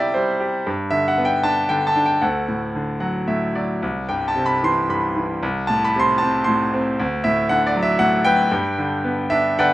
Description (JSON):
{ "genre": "classical, lyrical solo piano", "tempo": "115 BPM", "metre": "3/4", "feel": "uneven beats, rubato", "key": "G major", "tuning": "A4 = 440 Hz", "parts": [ { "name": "bright concert grand piano", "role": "solo", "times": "0.0-9.7 s", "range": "C2 to C6", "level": "-17 LUFS", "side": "equal", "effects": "none" } ], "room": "light reverb", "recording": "none", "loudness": "-18 LUFS", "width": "side -16 dB against mid", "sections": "0.0-9.7 A section", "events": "grand piano fill 2.7-3.8, 9.3-9.7", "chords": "0.0 C; 0.7 G; 2.2 D; 3.8 C; 5.4 Am/C; 7.0 D; 8.5 G" }